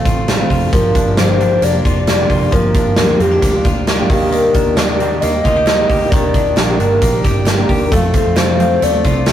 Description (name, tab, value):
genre	jangly indie pop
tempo	133 BPM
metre	4/4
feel	straight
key	unclear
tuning	A4 = 440 Hz
part	hollow clarinet-like synth lead	melody	0.0-9.3 s	G4 to Eb5	-16 LUFS	left 2 dB	chorus
part	fingerpicked steel-string acoustic guitar	accompaniment	0.0-9.3 s	F2 to G4	-18 LUFS	right 2 dB	none
part	direct-recorded clean electric guitar	arpeggios	0.0-9.3 s	Eb3 to G4	-24 LUFS	left 3 dB	none
part	vintage muted fingered electric bass	bass	0.1-9.3 s	F1 to F2	-20 LUFS	equal	none
part	big rock drum kit	drums	0.1-9.3 s	hi-hat, kick drum, snare drum	-16 LUFS	equal	none
part	mellow French horn section	sustained chords	4.3-9.3 s	Bb3 to F5	-26 LUFS	right 3 dB	none
part	group handclap	percussion	4.8-9.3 s	none	-34 LUFS	right 2 dB	none
room	light reverb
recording	rough rehearsal-room recording, warm saturation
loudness	-11 LUFS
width	side -11 dB against mid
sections	0.0-9.3 A section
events	none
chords	0.0 Dm7; 0.7 Gm7; 4.1 Ebmaj7; 7.9 F